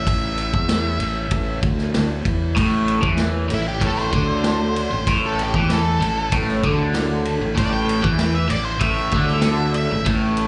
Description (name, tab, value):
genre	garage rock duo or trio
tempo	96 BPM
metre	4/4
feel	straight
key	A minor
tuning	A4 = 440 Hz
part	octave-fuzz lead guitar	melody	0.0-10.1 s	E4 to G5	-28 LUFS	equal	distortion, slapback echo
part	fuzz fingered electric bass	bass	0.0-10.5 s	A1 to E2	-26 LUFS	equal	overdrive
part	vintage drum kit	drums	0.1-10.5 s	kick drum, ride cymbal, snare drum	-26 LUFS	equal	none
part	crunchy overdriven guitar	riff	2.6-10.5 s	A2 to E3	-23 LUFS	equal	phaser, slapback echo
room	light reverb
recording	live gig heard through the venue's PA, club reverb, nothing above 10.6 kHz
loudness	-20 LUFS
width	mono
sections	0.0-10.5 A section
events	none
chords	0.0 A5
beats	| 0.06 0.69 1.31 1.94 | 2.56 3.19 3.81 4.44 | 5.07 5.69 6.32 6.94 | 7.57 8.19 8.82 9.44 | 10.07